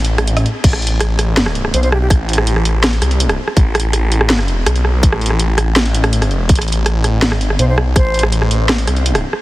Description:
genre	half-time drum and bass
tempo	164 BPM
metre	4/4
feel	half-time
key	A minor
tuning	A4 = 441 Hz
part	phased detuned saw bass	bass	0.0-9.2 s	A1 to C2	-15 LUFS	equal	phaser, tube saturation
part	drum and bass drum kit	drums	0.0-9.4 s	crash cymbal, hi-hat, rim click, snare drum	-17 LUFS	equal	none
part	electronic kick drum	drums	0.6-8.0 s	none	-10 LUFS	equal	none
part	concert flute	melody	1.7-2.1, 7.6-8.2 s	G4 to C5	-24 LUFS	equal	digital delay
room	light reverb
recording	heavily compressed radio sound, multiband compression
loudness	-12 LUFS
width	side -18 dB against mid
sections	0.6-9.4 A section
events	drop 0.6-9.4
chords	none

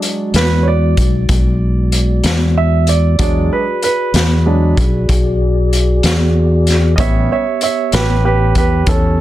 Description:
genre	slow blues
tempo	63 BPM (dotted quarters)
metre	12/8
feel	straight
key	E mixolydian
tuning	A4 = 438 Hz
part	clear baby grand piano	accompaniment	0.0-9.2 s	F#3 to E5	-18 LUFS	right 5 dB	none
part	mellow tonewheel organ	sustained chords	0.0-9.2 s	G#3 to D5	-21 LUFS	left 2 dB	slow rotary speaker, chorus vibrato
part	raw garage drum kit	drums	0.0-9.0 s	hi-hat, kick drum, snare drum	-17 LUFS	left 1 dB	none
part	fingered electric bass	bass	0.3-9.2 s	A1 to E2	-13 LUFS	equal	none
room	little or no reverb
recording	dense, heavily limited modern master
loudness	-11 LUFS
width	side -14 dB against mid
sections	0.0-9.2 A section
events	grand piano solo 0.0-9.2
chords	0.0 E9; 7.0 A9

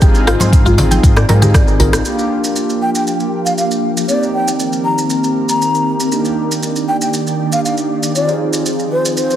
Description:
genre	afro house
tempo	118 BPM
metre	4/4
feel	straight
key	G phrygian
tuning	A4 = 440 Hz
part	mallet-like synth pluck	arpeggios	0.0-1.9 s	F4 to G5	-20 LUFS	left 1 dB	analog chorus, sidechain pumping, tape echo
part	mellow synth brass	stabs	0.0-9.4 s	Bb3 to Ab4	-18 LUFS	right 2 dB	chorus, sidechain pumping, tape echo
part	dark detuned saw bass	bass	0.0-2.0 s	Ab1 to Ab2	-14 LUFS	equal	sidechain pumping
part	afro-pop drum kit	drums	0.0-2.0 s	hi-hat, rim click	-21 LUFS	left 1 dB	low-pass filter on hats, low-pass filter on snare
part	electronic kick drum	drums	0.0-1.6 s	none	-10 LUFS	equal	none
part	djembe	percussion	0.0-1.9 s	none	-20 LUFS	right 1 dB	none
part	maracas	percussion	0.0-9.4 s	none	-23 LUFS	right 2 dB	none
part	congas	percussion	0.4-1.9 s	none	-20 LUFS	left 1 dB	none
part	ethereal airy pad	sustained chords	2.5-9.4 s	Eb3 to D5	-21 LUFS	left 2 dB	ensemble chorus, built-in reverb, phaser, sidechain pumping
part	breathy bass bansuri	melody	2.8-9.4 s	C5 to Bb5	-18 LUFS	left 1 dB	tape echo
room	moderate lush hall reverb, RT60 2.1 s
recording	heavily compressed radio sound, multiband compression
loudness	-12 LUFS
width	side -11 dB against mid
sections	0.0-2.1 A section; 2.1-9.4 B section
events	none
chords	0.0 Ab6; 2.1 Gm7; 4.1 Cm7; 6.1 Ebmaj7; 8.2 Ab6

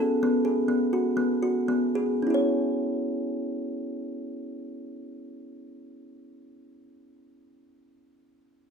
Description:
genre	contemporary instrumental, contemporary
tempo	108-132 BPM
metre	7/4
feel	straight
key	C# minor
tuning	A4 = 440 Hz
part	kalimba	arpeggios	0.0-6.4 s	B3 to C#5	-25 LUFS	equal	none
room	light reverb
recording	minimal, uncompressed stereo recording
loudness	-24 LUFS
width	side -6 dB against mid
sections	0.0-2.2 A section; 2.2-6.1 B section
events	slowing down 0.0-2.2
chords	0.0 B5; 2.2 C#m

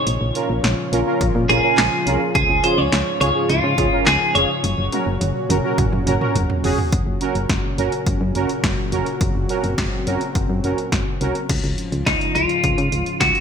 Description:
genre	synth-pop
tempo	105 BPM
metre	4/4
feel	straight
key	unclear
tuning	A4 = 441 Hz
part	twelve-string electric guitar	melody	0.0-6.6, 12.1-13.4 s	Eb4 to Db5	-19 LUFS	equal	wide subtle chorus
part	warm analog pad	sustained chords	0.0-13.4 s	Ab2 to Gb4	-26 LUFS	left 2 dB	chorus
part	solid FM bass	bass	0.1-13.3 s	F1 to Db3	-22 LUFS	equal	none
part	punchy analog drum machine	drums	0.1-13.4 s	crash cymbal, handclaps, hi-hat, kick drum, snare drum, toms	-22 LUFS	equal	none
part	analog synth brass	accompaniment	0.4-11.3 s	Db4 to Bb4	-24 LUFS	right 3 dB	chorus
room	moderate plate reverb, RT60 1.8 s, digital ambience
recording	bright 1980s-style digital production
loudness	-17 LUFS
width	side -7 dB against mid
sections	0.0-6.9 A section; 6.9-11.5 B section; 11.5-13.4 C section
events	drum fill 4.6-6.9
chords	0.1 Bbm; 2.4 Db; 4.6 Gb; 11.5 Db

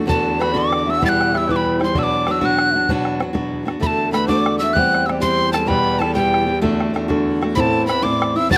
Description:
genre	celtic folk, Celtic slide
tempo	128 BPM (dotted quarters)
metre	12/8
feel	straight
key	E minor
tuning	A4 = 440 Hz
part	mellow bansuri	second line	0.0-8.6 s	G4 to G5	-28 LUFS	equal	slapback echo
part	fingerpicked steel-string acoustic guitar	accompaniment	0.0-8.6 s	E2 to G4	-22 LUFS	equal	slapback echo
part	rich cello	drone	0.0-8.6 s	E2	-29 LUFS	equal	none
part	breathy tin whistle	melody	0.1-8.6 s	G5 to A6	-22 LUFS	equal	none
part	bodhran	percussion	0.1-8.6 s	none	-27 LUFS	equal	none
room	little or no reverb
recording	recorded outdoors, with no room sound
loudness	-18 LUFS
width	mono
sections	0.0-8.6 A section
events	none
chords	0.1 Bm; 1.0 Em; 1.9 Bm; 3.8 D; 4.8 C/E; 5.7 Em; 6.6 D; 7.6 Amadd9

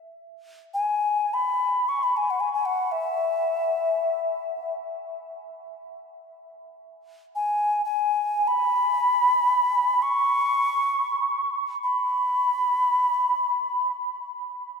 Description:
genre	world meditative, free-time meditation music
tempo	free time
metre	none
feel	none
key	unclear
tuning	A4 = 440 Hz
part	alto ocarina	solo	0.7-13.9 s	E5 to C#6	-22 LUFS	left 1 dB	none
room	wet cathedral reverb, RT60 6.6 s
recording	in a vast, echoing space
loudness	-21 LUFS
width	side -5 dB against mid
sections	0.0-6.4 A section; 6.4-14.8 A section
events	none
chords	none

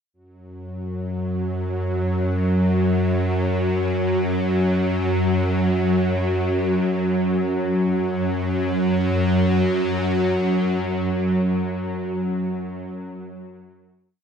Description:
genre	dark ambient drone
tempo	free time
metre	none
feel	none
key	unclear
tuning	A4 = 439 Hz
part	bowed-like drone	solo	0.6-12.1 s	F#2 to F#3	-20 LUFS	equal	built-in reverb, diffuse ambient delay
room	wet huge ambient reverb, RT60 8.3 s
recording	none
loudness	-19 LUFS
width	side -7 dB against mid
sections	0.1-7.5 A section; 7.5-11.2 final note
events	none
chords	none

